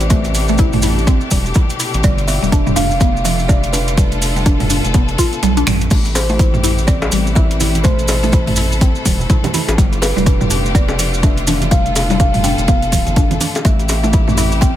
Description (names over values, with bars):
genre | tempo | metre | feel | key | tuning
afro house | 124 BPM | 4/4 | swing 60% on 16ths | A minor | A4 = 435 Hz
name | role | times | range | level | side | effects
kalimba | melody | 0.0-14.8 s | B4 to G5 | -23 LUFS | equal | dub echo
clear symphonic string section | sustained chords | 0.0-14.8 s | B2 to A4 | -23 LUFS | left 2 dB | sidechain pumping
round analog bass | bass | 0.0-14.8 s | D1 to B1 | -19 LUFS | equal | sidechain pumping
deep house drum kit | drums | 0.0-14.7 s | crash cymbal, finger snaps, hi-hat, toms | -23 LUFS | equal | overdrive
maracas | percussion | 0.0-14.7 s | none | -25 LUFS | right 3 dB | none
mallet-like synth pluck | arpeggios | 0.1-14.7 s | F3 to F4 | -21 LUFS | equal | chorus, phaser, sidechain pumping, dub echo
electronic kick drum | drums | 0.1-14.7 s | none | -14 LUFS | equal | overdrive
bongos | percussion | 5.9-14.4 s | none | -24 LUFS | left 3 dB | none
congas | percussion | 7.6-13.5 s | none | -21 LUFS | right 4 dB | none
room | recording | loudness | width
studio ambience | none | -12 LUFS | side -12 dB against mid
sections
0.0-14.8 A section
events
kick drops out 5.4-5.9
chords
0.0 Am9; 2.0 G9; 5.9 Am9; 9.8 G9; 13.7 Am9